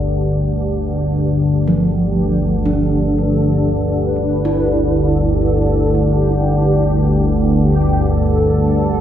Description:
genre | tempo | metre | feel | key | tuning
dark ambient drone | 60 BPM | 4/4 | straight | unclear | A4 = 439 Hz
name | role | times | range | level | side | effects
mellow horn-like synth lead | melody | 0.0-9.0 s | G4 to B4 | -25 LUFS | equal | ensemble chorus, analog delay
organ-like drone | drone | 0.0-9.0 s | G1 to D2 | -14 LUFS | equal | ensemble chorus, built-in reverb
bronze singing bowl | texture | 0.0-9.0 s | none | barely audible | none | none
gamelan-type bronze metallophone | arpeggios | 1.7-9.0 s | F3 to E4 | -21 LUFS | right 2 dB | analog delay
room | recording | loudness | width
wet echo chamber reverb, RT60 2.0 s, small room ambience | echo-heavy mix | -13 LUFS | side -10 dB against mid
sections
0.0-9.0 A section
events
fade-in on soft synth lead 0.0-9.0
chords
0.0 G5; 4.1 Em

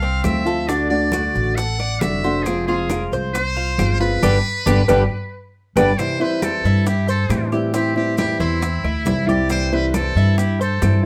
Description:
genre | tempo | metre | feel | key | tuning
latin, Cuban son and guajira | 136 BPM | 4/4 | straight | C major | A4 = 440 Hz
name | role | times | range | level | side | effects
trumpet with metal mute | melody | 0.0-11.0 s | E4 to F#5 | -26 LUFS | equal | none
Cuban tres | arpeggios | 0.0-11.0 s | C4 to D5 | -27 LUFS | equal | none
upright bass | bass | 0.0-11.1 s | F1 to A2 | -23 LUFS | equal | none
congas | percussion | 0.0-11.0 s | none | -30 LUFS | equal | none
nylon-string guitar | accompaniment | 0.2-11.1 s | C3 to F#4 | -24 LUFS | equal | none
bongos | percussion | 0.2-11.0 s | none | -31 LUFS | equal | none
claves | percussion | 0.2-11.0 s | none | -38 LUFS | equal | none
maracas | percussion | 0.2-11.0 s | none | -40 LUFS | equal | none
room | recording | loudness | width
light reverb | none | -19 LUFS | mono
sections
0.0-6.0 A section; 6.0-11.1 B section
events
band accent 4.2-6.0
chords
0.0 F; 0.7 D; 2.5 Fm; 4.2 G; 6.0 C; 7.7 Am7; 9.5 C

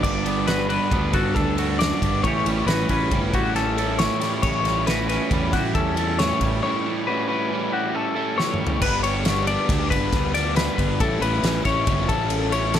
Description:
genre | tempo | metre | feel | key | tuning
math rock and midwest emo | 137 BPM | 5/4 | straight | unclear | A4 = 440 Hz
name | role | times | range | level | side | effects
twangy electric guitar | accompaniment | 0.0-11.0 s | F#2 to A4 | -28 LUFS | right 8 dB | none
twelve-string electric guitar | arpeggios | 0.0-12.8 s | F#4 to D5 | -25 LUFS | left 6 dB | none
overdriven electric guitar | riff | 0.0-12.8 s | G2 to E4 | -26 LUFS | right 1 dB | none
fuzz fingered electric bass | bass | 0.0-12.8 s | G1 to E2 | -26 LUFS | equal | overdrive
loose indie drum kit | drums | 0.0-12.8 s | crash cymbal, kick drum, ride cymbal, snare drum, toms | -26 LUFS | equal | none
room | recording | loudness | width
little or no reverb | none | -19 LUFS | side -10 dB against mid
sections
0.0-8.8 A section; 8.8-12.8 B section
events
break 6.6-8.8; drum fill 8.4-8.8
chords
0.0 Gmaj9; 2.2 A9; 8.8 G; 11.0 A9

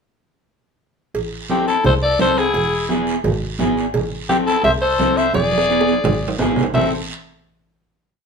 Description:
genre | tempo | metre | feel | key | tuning
latin, cumbia | 172 BPM | 4/4 | straight | A harmonic minor | A4 = 440 Hz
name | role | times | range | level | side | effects
rich double bass | bass | 1.1-6.9 s | E1 to C2 | -24 LUFS | equal | none
congas | percussion | 1.1-6.8 s | none | -25 LUFS | right 4 dB | none
cowbell and timbales | percussion | 1.1-6.8 s | none | -25 LUFS | right 6 dB | none
guiro | percussion | 1.1-6.8 s | none | -33 LUFS | right 5 dB | none
raspy alto saxophone | melody | 1.5-6.9 s | G4 to E5 | -18 LUFS | equal | none
bright trumpet | second line | 1.5-6.9 s | C4 to C5 | -24 LUFS | left 6 dB | none
electric guitar at the edge of break-up | accompaniment | 1.5-6.9 s | B3 to A4 | -21 LUFS | left 1 dB | none
room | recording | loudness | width
moderate studio reverb, RT60 0.8 s | minimal, uncompressed stereo recording | -16 LUFS | side -5 dB against mid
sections
1.1-6.7 groove; 6.7-8.1 final chord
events
drum fill 5.3-6.7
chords
1.1 Am; 2.5 E; 3.9 Am; 5.3 E7; 6.7 Am

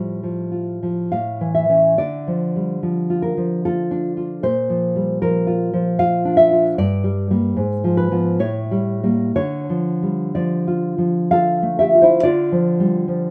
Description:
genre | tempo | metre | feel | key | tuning
romantic piece for solo classical guitar | 60-78 BPM | 3/4 | rubato | D minor | A4 = 440 Hz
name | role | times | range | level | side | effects
nylon-string guitar | solo | 0.0-13.3 s | G2 to F5 | -19 LUFS | equal | none
room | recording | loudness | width
little or no reverb | recorded outdoors, with no room sound | -19 LUFS | mono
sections
0.0-12.2 A section; 12.2-13.3 A section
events
none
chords
0.0 Fadd9/A; 1.1 A; 2.0 Dm; 4.4 Bb; 6.8 Gm; 7.6 G#dim7; 8.4 A7b9; 9.3 Dm

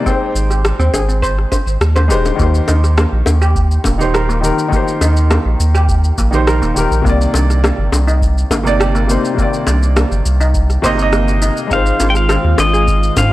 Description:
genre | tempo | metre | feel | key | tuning
sunset chillout | 103 BPM | 4/4 | straight | unclear | A4 = 438 Hz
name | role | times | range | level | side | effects
warm baby grand piano | accompaniment | 0.0-13.3 s | C3 to G5 | -18 LUFS | moving between left 4 dB and right 4 dB | auto-pan, tape echo
steel pan | arpeggios | 0.1-13.3 s | Bb3 to C5 | -22 LUFS | right 1 dB | tape echo
electronic kick drum | drums | 0.1-13.3 s | none | -19 LUFS | equal | overdrive, studio reverb
electronic shaker and rim click | drums | 0.1-13.3 s | none | -22 LUFS | equal | overdrive, studio reverb
warm sub bass | bass | 0.3-13.3 s | Eb1 to Ab2 | -14 LUFS | equal | none
bongos | percussion | 0.9-13.3 s | none | -21 LUFS | left 3 dB | none
pedal steel guitar | melody | 11.7-13.3 s | Eb5 to G5 | -16 LUFS | left 2 dB | none
airy breathy pad | sustained chords | 11.7-13.3 s | Eb3 to F4 | -21 LUFS | right 1 dB | chorus, phaser
room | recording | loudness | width
studio reverb | dry, gritty hardware recording, cassette tape | -11 LUFS | side -16 dB against mid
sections
0.0-2.4 A section; 2.4-13.3 B section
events
none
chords
0.1 Abmaj7; 2.4 Eb6; 7.1 Cm9; 11.7 Ab6

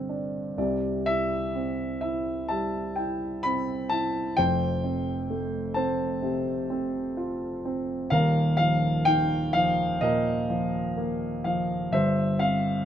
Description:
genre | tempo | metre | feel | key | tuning
classical, lyrical solo piano | 63 BPM | 4/4 | rubato | unclear | A4 = 440 Hz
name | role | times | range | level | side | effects
dark grand piano | solo | 0.0-12.8 s | Eb1 to B5 | -24 LUFS | equal | none
room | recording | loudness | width
light reverb | close, detailed microphones | -24 LUFS | side -10 dB against mid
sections
0.0-12.8 A section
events
none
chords
0.0 Gsus4; 0.6 C; 4.4 Fadd9; 8.1 Ebsus2; 11.9 Gsus4

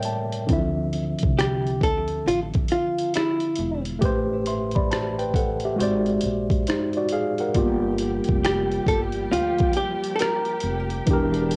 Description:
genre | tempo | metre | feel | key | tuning
lo-fi hip hop | 68 BPM | 4/4 | swing 64% on 16ths | D minor | A4 = 440 Hz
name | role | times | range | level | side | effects
tine electric piano | accompaniment | 0.0-11.6 s | A2 to C6 | -28 LUFS | equal | overdrive, cassette tape
warm symphonic string section | sustained chords | 0.0-0.5, 7.5-11.6 s | C#3 to G4 | -36 LUFS | equal | cassette tape
boom bap sampler-style drum kit | drums | 0.0-11.6 s | hi-hat, kick drum, rim click | -28 LUFS | equal | none
upright bass | bass | 0.5-11.6 s | E1 to D2 | -32 LUFS | equal | none
archtop guitar, miked and amplified | melody | 1.4-10.9 s | E4 to Bb4 | -26 LUFS | equal | cassette tape, tape echo
room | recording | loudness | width
light reverb | home recording on cassette | -24 LUFS | mono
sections
0.5-11.6 A section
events
tine electric piano fill 0.0-0.5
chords
0.5 Dm9; 4.0 Am9; 5.8 G#7#11; 7.5 Gm7

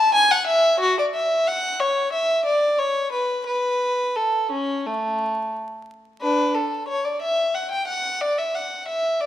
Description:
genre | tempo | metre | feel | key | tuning
classical, baroque-style suite movement for unaccompanied violin | 90 BPM | 4/4 | rubato | A major, D major from 6.2 s | A4 = 440 Hz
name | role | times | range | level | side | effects
rich violin | solo | 0.0-9.3 s | A3 to A5 | -20 LUFS | left 1 dB | none
room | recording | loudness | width
moderate recital hall reverb, RT60 1.6 s | minimal, uncompressed stereo recording, vinyl crackle | -20 LUFS | side -12 dB against mid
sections
0.0-6.2 A section; 6.2-9.3 A section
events
none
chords
none

